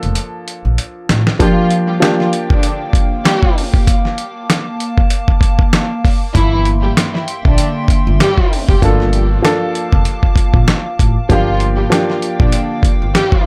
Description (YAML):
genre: hip hop, boom-bap hip-hop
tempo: 97 BPM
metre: 4/4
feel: swing 57% on 16ths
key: G dorian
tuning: A4 = 440 Hz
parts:
  - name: clear upright piano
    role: accompaniment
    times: 0.0-3.8, 8.8-13.5 s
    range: F3 to A4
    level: -21 LUFS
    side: equal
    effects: cassette tape, high-pass filter, low-pass filter
  - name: upright bass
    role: bass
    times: 0.0-1.2, 6.3-13.1 s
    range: F1 to Bb1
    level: -19 LUFS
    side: equal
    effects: none
  - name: dusty soul sampler-style drum kit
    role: drums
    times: 0.0-13.4 s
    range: hi-hat, kick drum, rim click, snare drum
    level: -16 LUFS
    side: equal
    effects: none
  - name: hollow soft pad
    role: sustained chords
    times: 1.9-13.5 s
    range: Bb3 to D6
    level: -26 LUFS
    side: equal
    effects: chorus, high-pass filter, low-pass filter
  - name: warm studio string section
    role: stabs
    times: 1.4-13.4 s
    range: D3 to G4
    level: -21 LUFS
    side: equal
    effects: high-pass filter, low-pass filter, digital delay
room: light reverb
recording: none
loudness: -14 LUFS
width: mono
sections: 0.0-1.4 A section; 1.4-13.5 B section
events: drum fill 0.0-1.4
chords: 0.0 Bbmaj7; 1.4 Gm7; 6.3 C7/G; 8.8 Bbmaj7